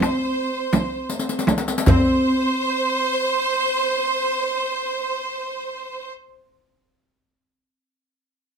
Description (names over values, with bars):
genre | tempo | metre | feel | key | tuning
Arabic maqam ensemble | 50 BPM (dotted quarters) | 6/8 | straight | unclear | A4 = 439 Hz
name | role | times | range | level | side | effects
oud | melody | 0.0-6.1 s | C4 | -23 LUFS | equal | none
bright studio violin section | second line | 0.0-6.1 s | C5 | -22 LUFS | right 2 dB | none
darbuka | percussion | 0.0-2.2 s | none | -21 LUFS | left 2 dB | none
frame drum | percussion | 0.0-2.2 s | none | -20 LUFS | right 2 dB | none
riq | percussion | 0.0-2.2 s | none | -25 LUFS | left 4 dB | none
room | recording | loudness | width
moderate studio reverb, RT60 0.6 s | none | -19 LUFS | side -6 dB against mid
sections
0.0-1.9 A section; 1.9-6.6 B section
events
slowing down 0.0-1.9; drum fill 1.1-1.9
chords
none